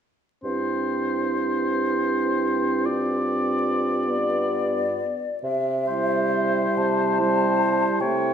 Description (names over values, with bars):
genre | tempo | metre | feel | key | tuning
classical, slow romantic movement for wind quintet | 47 BPM (dotted quarters) | 6/8 | uneven beats, rubato | C major | A4 = 443 Hz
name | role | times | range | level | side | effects
warm oboe | second line | 0.4-8.3 s | C5 to D5 | -27 LUFS | left 2 dB | none
mellow clarinet | accompaniment | 0.4-8.3 s | E4 to F4 | -28 LUFS | right 8 dB | none
warm French horn | accompaniment | 0.4-8.3 s | G3 to C4 | -29 LUFS | equal | none
dark bassoon | bass | 0.4-8.3 s | G2 to C3 | -27 LUFS | right 2 dB | none
mellow hollow silver concert flute | melody | 4.1-8.3 s | D5 to A5 | -25 LUFS | left 4 dB | none
room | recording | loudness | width
wet recital hall reverb, RT60 1.6 s | minimal, uncompressed stereo recording, vinyl crackle | -21 LUFS | side -8 dB against mid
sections
0.4-5.4 A section; 5.4-8.3 B section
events
none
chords
0.4 C/G; 2.9 G7; 5.4 C